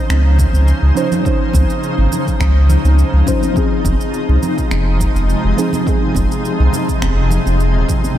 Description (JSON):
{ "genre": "sunset chillout", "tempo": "104 BPM", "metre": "4/4", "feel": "swing 53% on 16ths", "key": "unclear", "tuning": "A4 = 440 Hz", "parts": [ { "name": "mellow FM electric piano", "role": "accompaniment", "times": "0.0-8.2 s", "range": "F3 to C5", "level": "-20 LUFS", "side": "moving between left 7 dB and right 4 dB", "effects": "chorus, auto-pan, low-pass filter, analog delay" }, { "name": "shimmering ambient pad", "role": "sustained chords", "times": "0.0-8.2 s", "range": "C3 to C5", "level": "-20 LUFS", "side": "equal", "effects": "chorus, built-in reverb" }, { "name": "warm sub bass", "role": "bass", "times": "0.1-7.8 s", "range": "Eb1 to Db2", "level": "-12 LUFS", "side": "equal", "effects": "none" }, { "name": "electronic finger snaps and shaker", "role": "drums", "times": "0.1-8.2 s", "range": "none", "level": "-29 LUFS", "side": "right 2 dB", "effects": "none" }, { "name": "congas", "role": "percussion", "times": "0.1-8.1 s", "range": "none", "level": "-26 LUFS", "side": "right 3 dB", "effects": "none" }, { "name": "electronic kick drum", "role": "drums", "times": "0.4-8.0 s", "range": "none", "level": "-19 LUFS", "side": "equal", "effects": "none" } ], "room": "light reverb", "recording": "none", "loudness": "-12 LUFS", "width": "side -12 dB against mid", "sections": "0.0-8.2 A section", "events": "none", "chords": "0.0 Dbmaj9; 3.6 Fm7" }